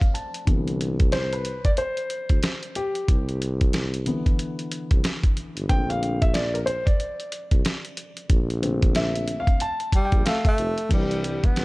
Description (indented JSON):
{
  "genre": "hip hop, jazz-hop",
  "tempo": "92 BPM",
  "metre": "4/4",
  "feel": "swing 61% on 16ths",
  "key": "C major",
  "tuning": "A4 = 440 Hz",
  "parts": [
    { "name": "dark grand piano", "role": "accompaniment", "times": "0.0-11.6 s", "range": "D3 to A5", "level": "-28 LUFS", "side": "left 1 dB", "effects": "none" },
    { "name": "dusty soul sampler-style drum kit", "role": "drums", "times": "0.0-11.6 s", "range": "crash cymbal, hi-hat, kick drum, snare drum", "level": "-22 LUFS", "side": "equal", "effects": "none" },
    { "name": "breathy tuba", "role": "bass", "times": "0.5-11.6 s", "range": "F1 to D2", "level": "-28 LUFS", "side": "equal", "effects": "none" },
    { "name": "breathy tenor saxophone", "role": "melody", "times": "10.0-11.6 s", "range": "G3 to B3", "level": "-26 LUFS", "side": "equal", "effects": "none" }
  ],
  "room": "small room ambience",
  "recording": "none",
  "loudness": "-21 LUFS",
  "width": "side -22 dB against mid",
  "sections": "0.5-10.9 A section",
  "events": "grand piano fill 0.0-0.5; grand piano solo 0.5-10.9",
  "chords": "0.5 Cmaj9; 5.7 Bbmaj9; 10.9 Cmaj9"
}